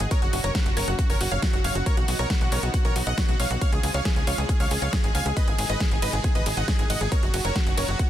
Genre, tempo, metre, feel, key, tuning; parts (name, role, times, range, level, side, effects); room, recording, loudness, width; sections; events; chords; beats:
uplifting trance; 137 BPM; 4/4; straight; F# major; A4 = 441 Hz
supersaw stab; melody; 0.0-8.1 s; F#4 to G#5; -28 LUFS; equal; sidechain pumping, digital delay
lush unison pad; sustained chords; 0.0-8.1 s; A#2 to G#4; -35 LUFS; equal; chorus, sidechain pumping
tight sequencer bass; bass; 0.0-8.0 s; F#1 to C#2; -27 LUFS; equal; sidechain pumping
big-room dance drum kit; drums; 0.0-8.1 s; hi-hat, ride cymbal, snare drum; -31 LUFS; equal
electronic kick drum; drums; 0.1-8.1 s; -23 LUFS; equal
digital ambience; dense, heavily limited modern master; -21 LUFS; side -12 dB against mid
0.0-8.1 A section
0.1 F#; 1.9 Badd9; 3.6 C#; 5.4 G#m; 7.1 F#
| 0.11 0.55 0.99 1.43 | 1.86 2.30 2.74 3.18 | 3.62 4.05 4.49 4.93 | 5.37 5.80 6.24 6.68 | 7.12 7.56 7.99